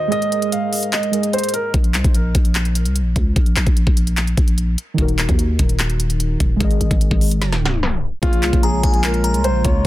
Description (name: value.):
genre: hip hop, trap.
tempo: 148 BPM.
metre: 4/4.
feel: half-time.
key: Bb minor.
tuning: A4 = 439 Hz.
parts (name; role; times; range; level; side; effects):
dark grand piano; melody; 0.0-1.7, 8.2-9.8 s; F4 to F5; -22 LUFS; equal; low-pass filter, tape echo.
warbly lo-fi synth keys; accompaniment; 0.0-1.8, 4.9-9.9 s; Eb3 to Eb5; -23 LUFS; right 1 dB; chorus, low-pass filter.
trap drum kit; drums; 0.1-9.9 s; handclaps, hi-hat, kick drum, snare drum; -18 LUFS; equal; none.
growling 808-style bass; bass; 1.7-9.9 s; Eb1 to Eb2; -19 LUFS; equal; none.
hollow soft pad; sustained chords; 8.4-9.9 s; Db3 to F4; -25 LUFS; equal; chorus.
glassy synth bell; second line; 8.6-9.8 s; Ab5 to Bb5; -24 LUFS; left 2 dB; chorus, tape echo.
room: digital ambience.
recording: dense, heavily limited modern master, tape stop.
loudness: -15 LUFS.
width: side -15 dB against mid.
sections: 0.0-8.2 A section; 8.2-9.9 B section.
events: break 0.0-1.7; drum fill 7.4-8.2; tape stop 7.4-8.2.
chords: 0.1 Absus2; 1.7 N.C.; 5.0 Ebm; 6.6 Absus2; 8.2 Bbm7.